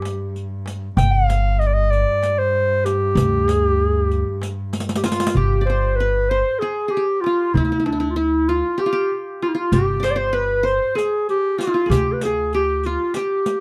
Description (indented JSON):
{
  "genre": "Turkish makam ensemble",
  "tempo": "192 BPM (eighths)",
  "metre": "7/8",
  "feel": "straight",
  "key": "G makam ussak, G makam hicaz from 5.4 s",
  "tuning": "A4 = 440 Hz",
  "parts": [
    { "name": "mellow clarinet", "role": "melody", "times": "0.0-13.6 s", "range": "D4 to G5", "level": "-22 LUFS", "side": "equal", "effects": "plate reverb" },
    { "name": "muted cello", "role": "drone", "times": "0.0-5.4 s", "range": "G2", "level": "-29 LUFS", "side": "equal", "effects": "none" },
    { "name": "darbuka", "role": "percussion", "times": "0.0-13.5 s", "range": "none", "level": "-27 LUFS", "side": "equal", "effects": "none" },
    { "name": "riq", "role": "percussion", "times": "0.1-5.3, 9.7-13.6 s", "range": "none", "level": "-30 LUFS", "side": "equal", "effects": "none" },
    { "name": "upright bass", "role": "bass", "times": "1.0-12.9 s", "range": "G1 to D2", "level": "-23 LUFS", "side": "equal", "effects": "none" },
    { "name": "qanun", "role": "second line", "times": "5.1-13.6 s", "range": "E4-40c to D5", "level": "-28 LUFS", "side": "equal", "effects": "none" }
  ],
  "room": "light reverb",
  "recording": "dark, warm production",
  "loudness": "-20 LUFS",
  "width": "mono",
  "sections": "0.0-5.4 A section; 5.4-13.6 B section",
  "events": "drum fill 4.7-5.4",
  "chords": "none"
}